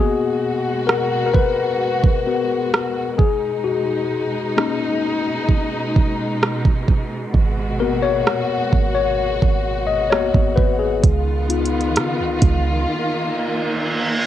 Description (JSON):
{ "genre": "contemporary R&B", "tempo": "65 BPM", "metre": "4/4", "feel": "straight", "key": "G# dorian", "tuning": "A4 = 444 Hz", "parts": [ { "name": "mellow tine electric piano", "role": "accompaniment", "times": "0.0-14.3 s", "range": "A#3 to D#5", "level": "-21 LUFS", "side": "left 7 dB", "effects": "medium stereo tremolo, cassette tape" }, { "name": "dark studio string section", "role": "sustained chords", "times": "0.0-14.3 s", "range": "B2 to F#4", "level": "-23 LUFS", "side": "equal", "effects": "sidechain pumping, cassette tape" }, { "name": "smooth R&B drum kit", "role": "drums", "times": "0.9-12.6 s", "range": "hi-hat, kick drum, rim click", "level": "-17 LUFS", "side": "right 2 dB", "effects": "cassette tape" }, { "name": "clean 808-style bass", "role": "bass", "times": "7.3-12.9 s", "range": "G#1 to C#3", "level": "-22 LUFS", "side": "right 2 dB", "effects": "none" }, { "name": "reverse cymbal", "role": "sound effects", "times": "13.3-14.3 s", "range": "none", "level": "-23 LUFS", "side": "right 2 dB", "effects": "none" } ], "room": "little or no reverb", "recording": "home recording on cassette", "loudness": "-17 LUFS", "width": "side -12 dB against mid", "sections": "0.0-14.3 A section", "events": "tine electric piano solo 0.0-14.3; break 12.9-14.3; reverse cymbal 13.3-14.3", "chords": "0.0 G#m9; 3.2 Bmaj7; 7.3 G#m9; 11.0 C#9" }